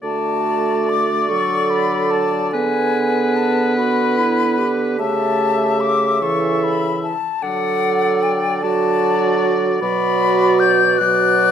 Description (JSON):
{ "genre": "classical, slow romantic movement for wind quintet", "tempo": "49 BPM (dotted quarters)", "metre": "6/8", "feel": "rubato", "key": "D major", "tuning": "A4 = 440 Hz", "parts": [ { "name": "hollow concert flute", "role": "melody", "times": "0.0-11.5 s", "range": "F#5 to G6", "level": "-20 LUFS", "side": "left 6 dB", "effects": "none" }, { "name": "clear oboe", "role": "second line", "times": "0.0-11.5 s", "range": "B4 to E5", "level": "-25 LUFS", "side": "left 3 dB", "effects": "none" }, { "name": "clear French horn", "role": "accompaniment", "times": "0.0-11.5 s", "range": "E3 to B3", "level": "-22 LUFS", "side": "right 1 dB", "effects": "none" }, { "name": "warm clarinet", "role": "accompaniment", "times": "0.0-11.5 s", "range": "E4 to A4", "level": "-22 LUFS", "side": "right 8 dB", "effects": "none" }, { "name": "mellow bassoon", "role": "bass", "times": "0.0-11.5 s", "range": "B2 to D3", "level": "-21 LUFS", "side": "right 2 dB", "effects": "none" } ], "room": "moderate recital hall reverb, RT60 1.2 s", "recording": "none", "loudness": "-15 LUFS", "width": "side -8 dB against mid", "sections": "0.0-11.5 A section", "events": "none", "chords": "0.0 D; 2.5 E7/D; 5.0 A7/C#; 7.4 D; 9.8 Bm" }